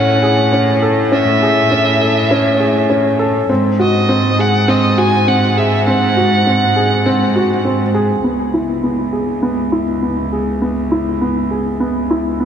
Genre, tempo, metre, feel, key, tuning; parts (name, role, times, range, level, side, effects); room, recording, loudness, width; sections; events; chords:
piano and strings electronica; 101 BPM; 4/4; straight; C# minor; A4 = 440 Hz
clear violin; melody; 0.0-7.6 s; D#5 to G#5; -17 LUFS; equal; low-pass filter, tape echo
dark upright piano; riff; 0.0-12.4 s; B3 to A4; -15 LUFS; equal; low-pass filter, tape echo
clear symphonic cello section; bass; 0.0-12.4 s; C#2 to A2; -18 LUFS; equal
wet plate reverb, RT60 3.4 s; dreamy mix soaked in reverb; -12 LUFS; side -8 dB against mid
0.0-8.2 A section; 8.2-12.4 B section
0.0 Amaj7; 3.5 G#7; 8.2 C#m7